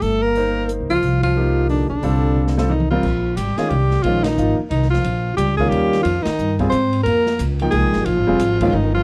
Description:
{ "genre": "modal jazz", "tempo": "179 BPM", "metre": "3/4", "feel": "swing 62% on 8ths", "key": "C dorian, Bb dorian from 3.0 s", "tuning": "A4 = 442 Hz", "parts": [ { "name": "breathy alto saxophone", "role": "melody", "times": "0.0-9.0 s", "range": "D4 to C5", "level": "-23 LUFS", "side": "equal", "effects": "none" }, { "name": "breathy trombone", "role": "second line", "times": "0.0-9.0 s", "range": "D3 to C4", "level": "-27 LUFS", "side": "equal", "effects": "none" }, { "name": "upright bass", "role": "bass", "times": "0.0-9.0 s", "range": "F1 to Ab2", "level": "-23 LUFS", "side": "equal", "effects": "none" }, { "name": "open jazz drum kit", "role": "drums", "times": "0.0-8.7 s", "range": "crash cymbal, hi-hat, kick drum, ride cymbal, snare drum, toms", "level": "-32 LUFS", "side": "equal", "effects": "none" }, { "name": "clear concert grand piano", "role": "accompaniment", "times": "0.4-8.7 s", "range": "Eb3 to G5", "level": "-24 LUFS", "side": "equal", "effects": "none" } ], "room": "studio reverb", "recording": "dry, close 1970s-style studio recording", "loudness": "-18 LUFS", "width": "mono", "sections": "0.0-3.0 A section; 3.0-9.0 B section", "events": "band accent 1.2, 4.2, 6.2; drum fill 2.4-3.0", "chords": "0.0 C9sus4; 3.0 Bb9sus4" }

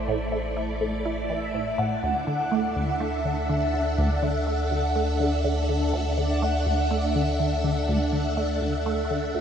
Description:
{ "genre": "ambient, sequencer-driven space music", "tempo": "123 BPM", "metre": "4/4", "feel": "straight", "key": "unclear", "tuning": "A4 = 440 Hz", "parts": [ { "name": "mellow horn-like synth lead", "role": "melody", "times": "0.0-8.6 s", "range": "C5 to F#5", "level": "-31 LUFS", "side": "equal", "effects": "ensemble chorus, ping-pong delay" }, { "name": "phased string machine", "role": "sustained chords", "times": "0.0-9.4 s", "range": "A3 to F#5", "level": "-28 LUFS", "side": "right 1 dB", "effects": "ensemble chorus, phaser" }, { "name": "warm sub bass", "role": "bass", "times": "0.0-9.4 s", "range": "A1 to D2", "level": "-28 LUFS", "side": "equal", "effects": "none" }, { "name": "resonant blip pluck", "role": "riff", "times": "0.1-9.4 s", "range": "D2 to E4", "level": "-28 LUFS", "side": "equal", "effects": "phaser, wide subtle chorus, ping-pong delay" } ], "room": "wet cathedral reverb, RT60 5.7 s", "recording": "in a vast, echoing space", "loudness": "-23 LUFS", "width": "side -8 dB against mid", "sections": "0.0-9.4 A section", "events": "none", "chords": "0.0 Am; 2.0 D" }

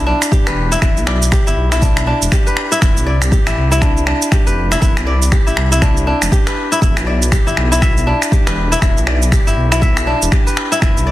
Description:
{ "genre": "afro house", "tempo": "120 BPM", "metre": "4/4", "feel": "swing 60% on 16ths", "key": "E phrygian", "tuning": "A4 = 440 Hz", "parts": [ { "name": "kora", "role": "arpeggios", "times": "0.0-11.1 s", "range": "D4 to E5", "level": "-18 LUFS", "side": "left 1 dB", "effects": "sidechain pumping, tape echo" }, { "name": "dark detuned saw bass", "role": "bass", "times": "0.0-11.1 s", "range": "E1 to C2", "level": "-17 LUFS", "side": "equal", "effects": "sidechain pumping" }, { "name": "electronic finger snaps and shaker", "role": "drums", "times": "0.2-11.1 s", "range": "none", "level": "-20 LUFS", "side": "right 1 dB", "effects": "small room ambience, soft clipping on snare" }, { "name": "electronic kick drum", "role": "drums", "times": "0.3-10.9 s", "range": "none", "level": "-14 LUFS", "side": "equal", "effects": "small room ambience" } ], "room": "little or no reverb", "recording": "dense, heavily limited modern master", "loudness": "-12 LUFS", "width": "side -15 dB against mid", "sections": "0.0-11.1 A section", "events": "none", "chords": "0.0 Em7; 2.8 Fmaj7(no3); 6.8 Em7" }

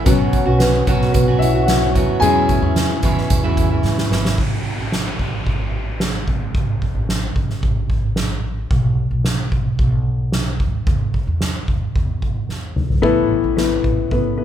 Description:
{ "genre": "piano-driven pop", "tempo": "111 BPM", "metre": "4/4", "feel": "straight", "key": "A major", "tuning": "A4 = 440 Hz", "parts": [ { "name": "warm concert grand piano", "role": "accompaniment", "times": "0.0-4.4, 13.0-14.4 s", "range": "A2 to G#5", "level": "-18 LUFS", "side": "left 4 dB", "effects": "none" }, { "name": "mellow tonewheel organ", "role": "sustained chords", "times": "0.0-4.4 s", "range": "B4 to C#6", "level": "-29 LUFS", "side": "right 1 dB", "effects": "fast rotary speaker" }, { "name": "fingerpicked steel-string acoustic guitar", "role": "riff", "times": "0.0-4.4 s", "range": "E2 to F#4", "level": "-21 LUFS", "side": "right 4 dB", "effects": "none" }, { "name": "upright bass", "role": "bass", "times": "0.0-14.4 s", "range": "G#1 to G#2", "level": "-22 LUFS", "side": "equal", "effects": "none" }, { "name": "soft-mallet drum kit", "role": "drums", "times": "0.1-14.2 s", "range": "hi-hat, kick drum, snare drum, toms", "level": "-20 LUFS", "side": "right 1 dB", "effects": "none" }, { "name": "downlifter", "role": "sound effects", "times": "4.4-8.7 s", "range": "none", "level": "-31 LUFS", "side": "equal", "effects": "none" } ], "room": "moderate large studio reverb, RT60 1.3 s", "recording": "band playing live in one room", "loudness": "-16 LUFS", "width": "side -10 dB against mid", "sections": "0.0-4.4 A section; 4.4-14.4 B section", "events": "grand piano solo 0.0-4.4; drum fill 3.8-4.4, 12.5-13.0", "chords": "0.1 Bsus2; 2.2 E6; 4.4 N.C.; 13.0 Asus2" }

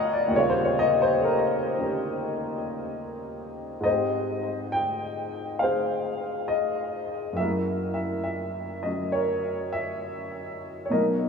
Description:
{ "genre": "solo jazz", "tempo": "68 BPM", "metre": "4/4", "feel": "swing 66% on 8ths", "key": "Ab major", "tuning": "A4 = 441 Hz", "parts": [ { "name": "warm upright piano", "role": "solo", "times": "0.0-11.3 s", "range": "Eb2 to B5", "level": "-24 LUFS", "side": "left 1 dB", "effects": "wide subtle chorus, diffuse ambient delay" } ], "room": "wet huge ambient reverb, RT60 4.1 s", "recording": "dreamy mix soaked in reverb, small room ambience", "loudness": "-24 LUFS", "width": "side -5 dB against mid", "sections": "0.0-3.8 A section; 3.8-11.3 B section", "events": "upright piano solo 0.0-3.8", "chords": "0.3 Eb13; 3.8 Abmaj7; 7.4 Gb7" }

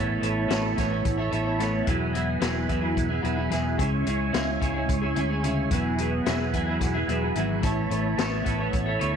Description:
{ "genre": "psychedelic rock", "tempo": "219 BPM (eighths)", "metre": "7/8", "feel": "straight", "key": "E major", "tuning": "A4 = 437 Hz", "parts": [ { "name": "tonewheel organ", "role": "sustained chords", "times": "0.0-9.2 s", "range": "C#5 to C#6", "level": "-35 LUFS", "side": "right 10 dB", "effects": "chorus vibrato, slow rotary speaker" }, { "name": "twelve-string electric guitar", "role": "riff", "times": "0.0-9.2 s", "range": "C#3 to C#5", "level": "-26 LUFS", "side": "equal", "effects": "phaser, double-tracked left and right" }, { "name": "fingered electric bass", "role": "bass", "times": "0.0-9.2 s", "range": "E1 to E2", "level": "-29 LUFS", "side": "equal", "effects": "none" }, { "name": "vintage drum kit", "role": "drums", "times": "0.2-9.1 s", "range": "hi-hat, kick drum, snare drum", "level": "-30 LUFS", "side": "left 2 dB", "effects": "none" } ], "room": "light reverb, small room ambience", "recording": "1960s-style stereo", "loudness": "-23 LUFS", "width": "side -7 dB against mid", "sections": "0.0-9.2 A section", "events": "none", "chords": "0.0 Aadd9; 1.9 Eadd9; 3.8 C#m; 5.7 Eadd9; 7.6 Aadd9" }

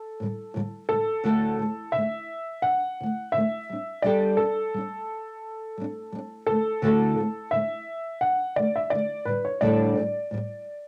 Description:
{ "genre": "acoustic pop", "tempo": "86 BPM", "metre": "4/4", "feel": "swing 55% on 16ths", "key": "D major", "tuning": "A4 = 439 Hz", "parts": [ { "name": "warm upright piano", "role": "melody", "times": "0.0-10.9 s", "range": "A4 to F#5", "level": "-29 LUFS", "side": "equal", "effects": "cassette tape" }, { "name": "nylon-string guitar", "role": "accompaniment", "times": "0.2-10.6 s", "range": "A2 to A4", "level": "-28 LUFS", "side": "equal", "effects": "double-tracked" } ], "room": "moderate studio reverb, RT60 0.5 s", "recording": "home recording on cassette", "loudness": "-26 LUFS", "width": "mono", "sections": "0.0-10.9 A section", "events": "none", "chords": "0.0 A7sus4; 1.3 Dadd9; 3.7 Gsus2; 6.5 Dadd9; 9.3 A7sus4" }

